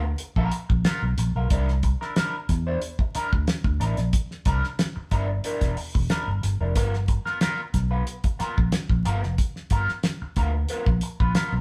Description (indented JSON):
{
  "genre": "funk",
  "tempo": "91 BPM",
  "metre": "4/4",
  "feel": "straight",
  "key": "unclear",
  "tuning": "A4 = 440 Hz",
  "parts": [
    { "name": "electric guitar at the edge of break-up", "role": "accompaniment", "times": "0.0-11.5 s", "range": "B3 to C5", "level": "-32 LUFS", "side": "equal", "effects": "wah" },
    { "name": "vintage muted fingered electric bass", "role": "bass", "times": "0.0-11.6 s", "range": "E1 to E2", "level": "-28 LUFS", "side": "equal", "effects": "none" },
    { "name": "damped 70s drum kit", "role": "drums", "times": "0.2-11.5 s", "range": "hi-hat, kick drum, snare drum", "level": "-27 LUFS", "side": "equal", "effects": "none" }
  ],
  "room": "moderate studio reverb, RT60 0.7 s",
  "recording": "band playing live in one room, vinyl crackle",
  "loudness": "-25 LUFS",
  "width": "mono",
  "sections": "0.0-11.6 A section",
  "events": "none",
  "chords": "0.0 G7#9 (rootless); 1.5 C9; 6.8 G7#9"
}